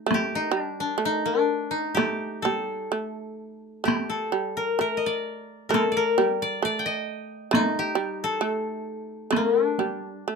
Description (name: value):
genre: japanese traditional, Japanese chamber music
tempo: 65 BPM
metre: 2/4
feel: uneven beats, rubato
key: unclear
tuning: A4 = 437 Hz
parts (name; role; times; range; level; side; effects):
- koto; melody; 0.0-10.4 s; D4 to G5; -26 LUFS; left 4 dB; none
- shamisen; second line; 0.0-10.4 s; G3 to A3; -29 LUFS; right 6 dB; none
- taiko ensemble; percussion; 0.1-10.0 s; none; -26 LUFS; equal; none
room: light reverb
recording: close, detailed microphones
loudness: -23 LUFS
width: side -5 dB against mid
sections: 0.0-10.4 A section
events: none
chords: none